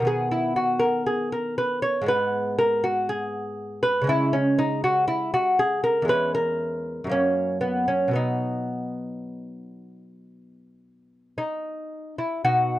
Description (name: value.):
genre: classical, baroque-style dance for lute.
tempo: 55-60 BPM.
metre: 4/4.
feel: rubato.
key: B major.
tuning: A4 = 440 Hz.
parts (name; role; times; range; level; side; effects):
lute; solo; 0.0-12.8 s; E2 to C#5; -22 LUFS; equal; none.
room: moderate booth ambience, RT60 0.2 s.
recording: dry, close 1970s-style studio recording.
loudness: -22 LUFS.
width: side -14 dB against mid.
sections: 0.0-12.5 A section.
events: none.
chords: 0.1 B; 2.1 G#m; 4.1 C#5; 6.1 C#m/E; 7.1 F#; 8.2 B.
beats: | 0.07 1.08 2.09 3.09 | 4.10 5.10 6.11 7.13 | 8.18 9.26 10.33 11.39 | 12.46.